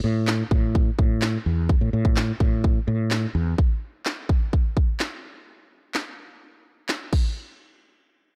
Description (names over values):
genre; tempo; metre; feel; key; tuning
dance-pop; 127 BPM; 4/4; straight; unclear; A4 = 444 Hz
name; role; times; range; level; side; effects
mellow fretless electric bass; bass; 0.0-3.5 s; E2 to A2; -25 LUFS; equal; sidechain pumping
house drum kit; drums; 0.3-7.2 s; crash cymbal, handclaps, kick drum, snare drum; -25 LUFS; equal; none
room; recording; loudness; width
little or no reverb; dark, warm production; -23 LUFS; mono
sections
0.0-7.4 A section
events
none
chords
none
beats
0.28 0.75 1.22 | 1.69 2.17 2.64 3.11 | 3.58 4.06 4.53 5.00 | 5.47 5.95 6.42 6.89